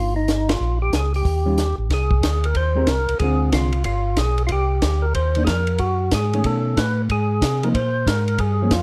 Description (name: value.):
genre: soul jazz organ trio.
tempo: 185 BPM.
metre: 4/4.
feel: swing 64% on 8ths.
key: unclear.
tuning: A4 = 442 Hz.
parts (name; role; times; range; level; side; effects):
percussive tonewheel organ; melody; 0.0-8.8 s; Eb4 to C5; -26 LUFS; equal; slow rotary speaker, overdrive.
hollow-body jazz guitar; accompaniment; 0.0-8.7 s; D3 to Bb4; -26 LUFS; equal; none.
mellow tonewheel organ; bass; 0.0-8.8 s; G1 to C3; -23 LUFS; equal; slow rotary speaker.
compact cocktail drum kit; drums; 0.3-8.8 s; hi-hat, kick drum, ride cymbal, snare drum; -26 LUFS; equal; none.
room: light reverb.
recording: dark, warm production.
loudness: -20 LUFS.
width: mono.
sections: 0.0-1.9 A section; 1.9-8.8 B section.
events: band accent 0.4.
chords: 0.0 Cm9 (rootless); 0.6 Bbm; 1.2 Eb9; 1.9 Abadd9; 3.2 Dm7b5; 3.9 G7; 4.5 Cm9; 5.8 F#m; 6.4 B9; 7.1 Abadd9.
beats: 0.28 | 0.60 0.93 1.25 1.57 | 1.90 2.23 2.55 2.88 | 3.20 3.52 3.85 4.17 | 4.50 4.82 5.15 5.47 | 5.80 6.12 6.45 6.77 | 7.10 7.42 7.75 8.07 | 8.40 8.72.